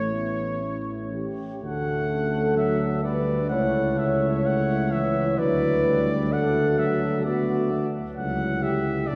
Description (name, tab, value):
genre	classical, hymn-like piece for brass band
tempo	64 BPM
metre	4/4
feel	rubato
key	D major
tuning	A4 = 440 Hz
part	clear cornet	melody	0.0-9.2 s	C#5 to F#5	-33 LUFS	equal	none
part	mellow French horn section	second line	0.0-9.2 s	E4 to C#5	-29 LUFS	equal	none
part	dark euphonium	accompaniment	0.0-9.2 s	A3 to F#4	-35 LUFS	equal	none
part	mellow trombone	accompaniment	0.0-9.2 s	E3 to B3	-35 LUFS	equal	none
part	mellow tuba	bass	0.0-9.2 s	A1 to D2	-29 LUFS	equal	none
room	wet cathedral reverb, RT60 6.8 s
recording	heard from further back in the room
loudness	-24 LUFS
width	mono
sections	0.0-1.6 A section; 1.6-9.2 A section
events	none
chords	0.0 A; 1.6 D; 3.5 A/C#; 5.4 D